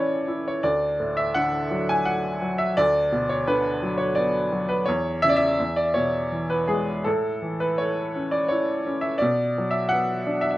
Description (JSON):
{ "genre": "classical, lyrical solo piano", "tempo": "84 BPM", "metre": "3/4", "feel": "rubato", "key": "A major", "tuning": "A4 = 440 Hz", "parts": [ { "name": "clear upright piano", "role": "solo", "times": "0.0-10.6 s", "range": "D2 to G#5", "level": "-21 LUFS", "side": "equal", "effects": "none" } ], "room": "light reverb", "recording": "close, detailed microphones", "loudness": "-21 LUFS", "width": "side -16 dB against mid", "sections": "0.0-10.6 A section", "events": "none", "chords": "0.0 A; 0.6 D; 2.8 Bm/D; 4.9 C#m/E; 5.6 E; 7.1 A; 9.2 Bm" }